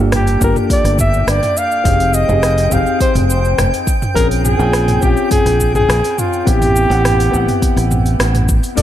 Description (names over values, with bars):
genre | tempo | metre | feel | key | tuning
sunset chillout | 104 BPM | 4/4 | straight | unclear | A4 = 440 Hz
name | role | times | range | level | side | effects
dark grand piano | accompaniment | 0.0-8.8 s | Bb3 to G5 | -20 LUFS | moving between left 7 dB and right 3 dB | auto-pan, ping-pong delay
fingered electric bass | bass | 0.0-8.8 s | F1 to Bb1 | -15 LUFS | equal | none
twinkling granular texture | texture | 0.6-8.8 s | G5 | -27 LUFS | right 2 dB | built-in reverb
deep house drum kit | drums | 0.1-8.8 s | hi-hat, rim click, shaker, toms | -20 LUFS | right 1 dB | none
breathy flugelhorn | melody | 0.2-8.8 s | F4 to F5 | -17 LUFS | equal | ping-pong delay
electronic kick drum | drums | 0.4-8.8 s | none | -17 LUFS | equal | none
room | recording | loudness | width
light reverb, digital ambience | none | -11 LUFS | side -12 dB against mid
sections
0.0-8.8 A section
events
none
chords
0.0 Gm9; 1.9 Fm9; 3.9 Bbm9; 6.5 Am9